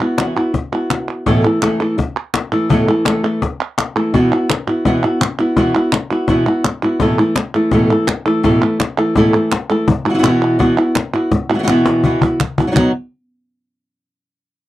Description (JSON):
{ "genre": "flamenco", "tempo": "167 BPM", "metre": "4/4", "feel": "straight", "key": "unclear", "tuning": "A4 = 441 Hz", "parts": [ { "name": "flamenco guitar", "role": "melody", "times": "0.0-12.9 s", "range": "A2 to A4", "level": "-14 LUFS", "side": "equal", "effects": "none" }, { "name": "palmas hand claps", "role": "percussion", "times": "0.0-12.8 s", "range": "none", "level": "-22 LUFS", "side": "right 7 dB", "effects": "none" }, { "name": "cajon", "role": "percussion", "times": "0.2-12.8 s", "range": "none", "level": "-19 LUFS", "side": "left 3 dB", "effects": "none" } ], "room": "light reverb", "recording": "dry, close 1970s-style studio recording", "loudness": "-13 LUFS", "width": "side -15 dB against mid", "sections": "0.0-1.3 A section; 1.3-12.8 A section; 12.8-14.2 B section", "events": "drum fill 11.7-12.8", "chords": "0.0 Bsus4; 1.3 A5; 4.1 Bsus4; 7.0 Asus2; 9.9 Bsus4; 12.8 N.C.", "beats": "0.18 0.54 0.90 | 1.26 1.62 1.98 2.34 | 2.70 3.06 3.42 3.78 | 4.13 4.49 4.85 5.21 | 5.57 5.93 6.29 6.64 | 7.00 7.36 7.72 8.08 | 8.44 8.80 9.16 9.52 | 9.88 10.24 10.60 10.96 | 11.32 11.68 12.04 12.40 | 12.76" }